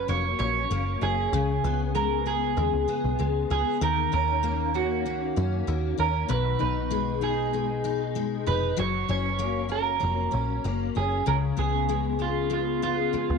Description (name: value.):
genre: indie pop, bedroom pop.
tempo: 97 BPM.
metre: 4/4.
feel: straight.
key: unclear.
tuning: A4 = 440 Hz.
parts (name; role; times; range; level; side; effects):
electric guitar through a small old amp; melody; 0.0-13.4 s; F4 to Db5; -28 LUFS; right 10 dB; wide subtle chorus, tape echo.
picked steel-string acoustic guitar; accompaniment; 0.0-13.4 s; B2 to D#4; -28 LUFS; left 11 dB; ensemble chorus, warbly pitch drift.
deep dub picked electric bass; bass; 0.0-13.4 s; F1 to Gb2; -29 LUFS; equal; none.
room: light reverb, small room reverb.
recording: 1960s-style stereo with parts hard left and right.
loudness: -24 LUFS.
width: side -5 dB against mid.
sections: 0.0-13.4 A section.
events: none.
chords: 0.0 Gbmaj7; 1.3 Db5; 3.8 Ebm7; 6.3 B6; 8.8 Gb; 11.3 Db7.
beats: 0.09 0.71 | 1.33 1.95 2.57 3.19 | 3.81 4.43 5.05 5.67 | 6.29 6.92 7.54 8.16 | 8.78 9.40 10.02 10.64 | 11.26 11.88 12.51 13.13.